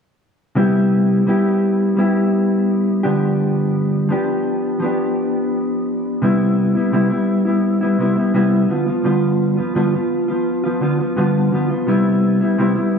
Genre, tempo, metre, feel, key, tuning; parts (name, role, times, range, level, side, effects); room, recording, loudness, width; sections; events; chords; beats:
indie pop; 85 BPM; 4/4; straight; C major; A4 = 440 Hz
mellow electric guitar; solo; 0.6-13.0 s; G2 to G4; -15 LUFS; equal; vibrato effect
wet stone room reverb, RT60 1.5 s; band playing live in one room; -15 LUFS; side -6 dB against mid
0.6-6.2 A section; 6.2-13.0 B section
0.6 Cmaj7; 3.0 G7; 6.2 Cmaj7; 8.7 G7; 11.9 Cmaj7
| 0.56 1.27 1.98 2.69 | 3.39 4.10 4.81 5.52 | 6.23 6.93 7.64 8.35 | 9.06 9.77 10.47 11.18 | 11.89 12.60